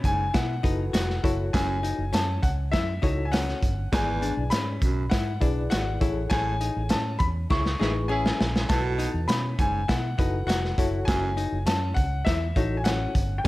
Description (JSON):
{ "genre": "uptempo 1960s-style soul", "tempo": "101 BPM", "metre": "4/4", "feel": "straight", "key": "unclear", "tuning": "A4 = 440 Hz", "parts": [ { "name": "warm concert grand piano", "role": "melody", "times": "0.0-13.5 s", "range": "E5 to C#6", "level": "-31 LUFS", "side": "left 2 dB", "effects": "slapback echo" }, { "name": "breathy baritone saxophone", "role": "riff", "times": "0.0-13.5 s", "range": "E2 to B2", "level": "-33 LUFS", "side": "right 4 dB", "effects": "none" }, { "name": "hollow-body jazz guitar", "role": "riff", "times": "0.0-13.4 s", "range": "C#4 to F#4", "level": "-34 LUFS", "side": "left 6 dB", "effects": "none" }, { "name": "vintage muted fingered electric bass", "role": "bass", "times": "0.0-13.5 s", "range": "E#1 to B2", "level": "-28 LUFS", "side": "equal", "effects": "none" }, { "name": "crunchy breakbeat drum kit", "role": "drums", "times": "0.0-13.5 s", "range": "hi-hat, kick drum, snare drum", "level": "-26 LUFS", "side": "equal", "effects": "none" }, { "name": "reed electric piano", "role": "accompaniment", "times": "0.6-13.5 s", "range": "G#2 to D5", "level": "-33 LUFS", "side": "left 3 dB", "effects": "fast tremolo" }, { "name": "warm horn section", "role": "second line", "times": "7.5-8.7 s", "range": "C#4 to G#4", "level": "-34 LUFS", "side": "right 2 dB", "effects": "none" } ], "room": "small room ambience", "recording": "none", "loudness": "-23 LUFS", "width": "side -18 dB against mid", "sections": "0.0-13.5 A section", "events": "band accent 6.3-8.7; drum fill 7.5-8.7", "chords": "0.0 B7sus4; 1.2 F#m7; 3.9 E7/G#; 6.0 Amaj7; 8.7 B7sus4; 10.8 F#m7", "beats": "0.34 0.93 | 1.53 2.13 2.73 3.33 | 3.92 4.52 5.12 5.72 | 6.31 6.91 7.51 8.10 | 8.70 9.29 9.89 10.48 | 11.07 11.67 12.26 12.86 | 13.45" }